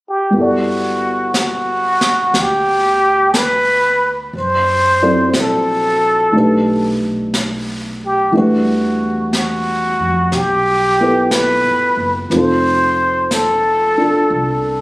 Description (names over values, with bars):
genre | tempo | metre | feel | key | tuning
jazz ballad | 60 BPM | 4/4 | swing 68% on 8ths | G major | A4 = 440 Hz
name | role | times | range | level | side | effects
trumpet with plunger mute | melody | 0.1-14.8 s | F#4 to C5 | -14 LUFS | equal | none
dark baby grand piano | accompaniment | 0.3-14.8 s | E3 to D5 | -17 LUFS | equal | none
upright bass | bass | 0.3-14.8 s | F1 to F#2 | -26 LUFS | equal | none
jazz brush drum kit | drums | 0.3-14.8 s | brushed snare drum, hi-hat, snare drum | -23 LUFS | equal | none
room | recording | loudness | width
light reverb | recorded on a phone in the room, studio reverb | -12 LUFS | side -19 dB against mid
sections
0.3-14.8 A section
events
none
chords
0.3 Gmaj9; 4.3 F#m7b5; 6.3 B7alt; 8.3 Em9; 12.3 F7